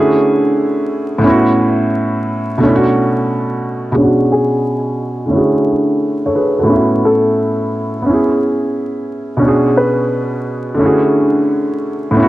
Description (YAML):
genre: hip hop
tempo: 88 BPM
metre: 4/4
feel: swing 64% on 16ths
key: B dorian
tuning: A4 = 440 Hz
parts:
  - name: felt-muted upright piano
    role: accompaniment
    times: 0.0-12.3 s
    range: A2 to C#5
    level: -12 LUFS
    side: right 1 dB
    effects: low-pass filter
  - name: warm upright piano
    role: melody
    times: 4.3-11.0 s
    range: G#4 to B4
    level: -18 LUFS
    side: left 1 dB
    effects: low-pass filter
room: moderate plate reverb, RT60 3.2 s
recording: vinyl crackle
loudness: -12 LUFS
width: side -16 dB against mid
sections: 0.0-4.0 A section; 4.0-12.3 B section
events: filter sweep 4.0-12.3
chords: 0.0 Dmaj9#11; 1.2 A6; 2.6 Bm7; 4.0 Bm69; 5.3 Dmaj9#11; 6.7 A6; 8.1 C#m7; 9.4 Bm69; 10.8 Dmaj9#11